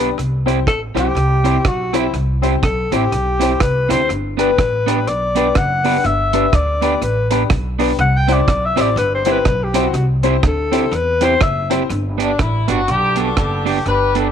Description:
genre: ska.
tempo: 123 BPM.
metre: 4/4.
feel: swing 59% on 8ths.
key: G major.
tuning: A4 = 440 Hz.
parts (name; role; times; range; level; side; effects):
electric guitar at the edge of break-up; accompaniment; 0.0-14.3 s; B3 to G4; -22 LUFS; right 14 dB; none.
warm upright piano; stabs; 0.0-11.9 s; B3 to C5; -22 LUFS; left 12 dB; none.
upright bass; bass; 0.0-14.3 s; F#1 to E2; -20 LUFS; equal; none.
deep reggae drum kit; drums; 0.2-14.2 s; hi-hat, kick drum, rim click; -20 LUFS; right 2 dB; tape echo.
breathy alto saxophone; melody; 0.7-11.7 s; E4 to G5; -18 LUFS; left 2 dB; none.
mellow horn section; melody; 12.2-14.3 s; B3 to B4; -18 LUFS; left 2 dB; tape echo.
room: light reverb, small room ambience.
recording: 1960s-style stereo with parts hard left and right.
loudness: -14 LUFS.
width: side -8 dB against mid.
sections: 0.0-11.9 A section; 11.9-14.3 B section.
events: alto saxophone solo 0.0-11.9.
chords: 0.2 C; 4.1 G; 8.0 C; 11.9 G.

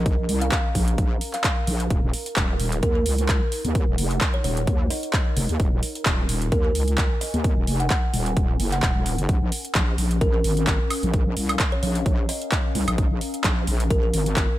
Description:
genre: bass house.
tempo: 130 BPM.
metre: 4/4.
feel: swing 55% on 16ths.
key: Eb minor.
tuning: A4 = 440 Hz.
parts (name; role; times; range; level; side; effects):
wobble bass; bass; 0.0-14.5 s; Eb1 to Eb2; -24 LUFS; equal; chorus, sidechain pumping.
warbly tape-like pad; texture; 0.0-14.6 s; Db4 to Bb5; -35 LUFS; equal; chorus, built-in reverb, sidechain pumping.
big-room dance drum kit; drums; 0.1-14.5 s; handclaps, hi-hat, woodblock; -27 LUFS; right 1 dB; overdrive.
electronic kick drum; drums; 0.1-14.5 s; none; -22 LUFS; equal; overdrive.
kalimba; melody; 0.4-14.1 s; Bb4 to Gb5; -31 LUFS; right 1 dB; dub echo.
room: digital ambience.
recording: none.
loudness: -20 LUFS.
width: side -15 dB against mid.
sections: 0.0-14.6 A section.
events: none.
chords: 0.0 Bbm; 1.9 Ebm; 9.3 Bbm.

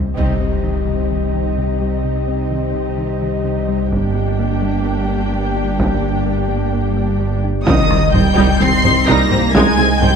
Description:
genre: cinematic, hybrid orchestral and electronic film score.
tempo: 128 BPM.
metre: 4/4.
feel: straight.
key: C minor.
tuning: A4 = 441 Hz.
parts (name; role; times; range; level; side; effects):
deep rumbling drone; sustained chords; 0.0-10.2 s; Eb3 to Eb5; -22 LUFS; left 4 dB; built-in reverb.
thumb-piano-like synth pluck; arpeggios; 0.0-10.2 s; C3 to G4; -26 LUFS; left 3 dB; chorus, ping-pong delay.
pure sine sub bass; bass; 0.0-10.2 s; G1 to C2; -23 LUFS; equal; none.
dark symphonic violin section; second line; 0.2-10.2 s; G4 to C6; -24 LUFS; left 2 dB; none.
warm symphonic viola section; accompaniment; 0.2-10.1 s; G3 to C5; -23 LUFS; right 1 dB; none.
mellow French horn section; sustained chords; 0.2-10.2 s; G3 to Eb4; -33 LUFS; left 2 dB; none.
clear symphonic cello section; bass; 0.2-10.2 s; G2 to C4; -23 LUFS; right 4 dB; none.
rich symphonic double bass section; bass; 0.2-10.1 s; G1 to C2; -24 LUFS; right 4 dB; none.
solo taiko drums; drums; 0.2-1.1, 3.9-10.2 s; none; -21 LUFS; equal; none.
impact; sound effects; 0.2-2.0, 7.7-9.5 s; none; -24 LUFS; equal; none.
warm symphonic violin section; melody; 7.7-10.2 s; Eb6 to C7; -19 LUFS; left 2 dB; none.
warm tuba; bass; 7.7-10.1 s; C2; -23 LUFS; right 5 dB; none.
room: moderate scoring stage reverb, RT60 1.8 s.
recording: dark, warm production.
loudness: -14 LUFS.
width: side -6 dB against mid.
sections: 0.2-7.7 A section; 7.7-10.2 B section.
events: drum fill 0.0; band accent 0.2-0.6; impact 0.2-2.0, 7.7-9.6.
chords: 0.2 Cm; 3.9 Gm; 7.7 Cm; 9.6 Ab/C.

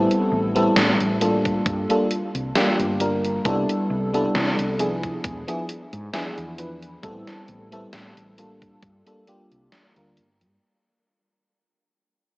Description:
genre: vaporwave.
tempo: 67 BPM.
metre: 4/4.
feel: swing 54% on 16ths.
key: unclear.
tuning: A4 = 440 Hz.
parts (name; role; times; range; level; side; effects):
FM electric piano with soft pad layer; accompaniment; 0.0-10.2 s; F3 to B4; -22 LUFS; equal; analog chorus, analog delay.
woody fretless electric bass; bass; 0.0-10.6 s; E1 to C3; -30 LUFS; equal; none.
gated 80s digital drum machine; drums; 0.1-10.6 s; hi-hat, snare drum; -24 LUFS; equal; gated reverb, gated reverb snare.
electronic kick drum; drums; 1.5-9.0 s; none; -28 LUFS; equal; none.
room: moderate huge ambient reverb, RT60 6.8 s.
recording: cassette tape, small speaker sound.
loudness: -20 LUFS.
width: side -23 dB against mid.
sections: 0.0-10.6 A section.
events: fade-out 0.0-10.6.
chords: 0.0 Am9; 1.7 Gm9; 3.5 Cmaj13; 5.2 E7b9; 7.0 Am9; 8.8 Gm9.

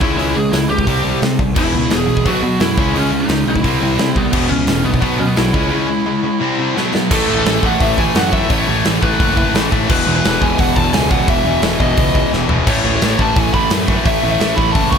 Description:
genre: punk rock.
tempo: 173 BPM.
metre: 4/4.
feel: straight.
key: unclear.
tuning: A4 = 441 Hz.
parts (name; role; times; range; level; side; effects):
lead guitar through a small cranked amp; melody; 0.0-15.0 s; B3 to C#6; -20 LUFS; right 1 dB; overdrive, digital delay.
overdriven electric guitar; riff; 0.0-15.0 s; E2 to C#4; -20 LUFS; left 13 dB; none.
sludgy distorted guitar; riff; 0.0-15.0 s; E2 to C#4; -22 LUFS; right 12 dB; overdrive.
fuzz picked electric bass; bass; 0.0-15.0 s; E1 to C3; -20 LUFS; equal; overdrive.
big rock drum kit; drums; 0.0-15.0 s; crash cymbal, hi-hat, kick drum, snare drum, toms; -18 LUFS; equal; none.
sludgy distorted guitar; riff; 1.5-15.0 s; E2 to C#4; -23 LUFS; equal; overdrive.
room: light reverb.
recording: none.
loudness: -13 LUFS.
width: side -7 dB against mid.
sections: 0.0-7.1 A section; 7.1-15.0 B section.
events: break 5.7-7.1; drum fill 6.8-7.1, 12.3-12.7.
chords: 0.0 C#5; 0.9 C5; 1.6 E; 2.3 B5; 2.8 C#5; 3.6 C; 4.3 E5; 5.0 B5; 5.5 C#m; 6.4 C; 6.8 B5; 7.1 A5; 9.9 E5; 12.7 A5.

